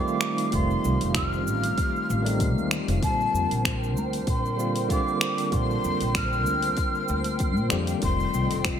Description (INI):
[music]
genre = sunset chillout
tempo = 96 BPM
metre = 4/4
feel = swing 55% on 16ths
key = Bb major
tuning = A4 = 436 Hz
[part]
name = breathy mellow jazz flute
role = melody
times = 0.0-8.6 s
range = A5 to F6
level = -29 LUFS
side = left 1 dB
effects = ping-pong delay
[part]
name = tine electric piano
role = accompaniment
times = 0.0-8.8 s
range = D3 to G4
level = -29 LUFS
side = moving between left 7 dB and right 5 dB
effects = medium tremolo, auto-pan
[part]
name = airy breathy pad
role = sustained chords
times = 0.0-8.8 s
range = A3 to G5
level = -33 LUFS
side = equal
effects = chorus
[part]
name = twinkling granular texture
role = texture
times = 0.0-8.8 s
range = C5 to C6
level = -39 LUFS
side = right 2 dB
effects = built-in reverb, lush chorus
[part]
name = deep house drum kit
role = drums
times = 0.1-8.8 s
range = cabasa, finger snaps, hi-hat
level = -30 LUFS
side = equal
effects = gated reverb
[part]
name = upright bass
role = bass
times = 0.5-8.8 s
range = F1 to Bb2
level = -28 LUFS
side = equal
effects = none
[part]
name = electronic kick drum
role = drums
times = 0.5-8.8 s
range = none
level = -28 LUFS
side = equal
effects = none
[sound]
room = light reverb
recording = bright 1980s-style digital production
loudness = -22 LUFS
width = side -9 dB against mid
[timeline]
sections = 0.0-8.8 A section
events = none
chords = 0.0 F9; 3.0 Bb69; 8.0 F9